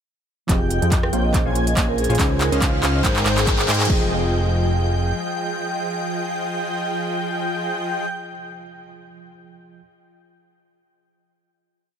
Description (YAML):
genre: future bass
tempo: 141 BPM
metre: 4/4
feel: swing 55% on 16ths, half-time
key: F minor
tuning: A4 = 440 Hz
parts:
  - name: tine electric piano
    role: accompaniment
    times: 0.5-9.8 s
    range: Bb2 to G5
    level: -29 LUFS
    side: right 3 dB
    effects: medium stereo tremolo, sidechain pumping, ping-pong delay
  - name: airy dreamy lead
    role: arpeggios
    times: 0.5-8.1 s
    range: F5 to Ab5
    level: -29 LUFS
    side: equal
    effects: chorus, sidechain pumping, ping-pong delay
  - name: supersaw stab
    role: riff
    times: 0.5-8.1 s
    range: F3 to Ab5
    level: -26 LUFS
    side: right 1 dB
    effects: sidechain pumping, low-pass filter, ping-pong delay
  - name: fat analog bass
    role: bass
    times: 0.5-5.1 s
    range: F1 to Ab2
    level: -22 LUFS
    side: equal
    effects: sidechain pumping
  - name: big-room dance drum kit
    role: drums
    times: 0.5-4.0 s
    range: crash cymbal, handclaps, hi-hat, rim click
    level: -25 LUFS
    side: equal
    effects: high-pass filter on snare, high-pass filter on hats, high-pass filter on cymbals, high-pass filter on room
  - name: electronic kick drum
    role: drums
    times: 0.5-4.0 s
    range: none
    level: -21 LUFS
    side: equal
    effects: none
  - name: riser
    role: sound effects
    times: 1.9-3.9 s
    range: none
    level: -31 LUFS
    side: equal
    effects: none
  - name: vibraphone with medium mallets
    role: melody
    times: 1.2-3.5 s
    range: Ab4 to Eb5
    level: -29 LUFS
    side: left 1 dB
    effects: sidechain pumping, tape echo
room: light reverb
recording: none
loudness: -18 LUFS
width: side -8 dB against mid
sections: 0.5-3.9 build; 3.9-7.3 final chord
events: build-up 0.5-3.9; drum fill 0.5-3.9; filter sweep on supersaw synth 0.5-3.9; riser 1.9-3.9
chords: 0.5 Fm7; 1.3 Bbm7; 2.2 Dbmaj7; 3.0 Abmaj7; 3.9 Fm7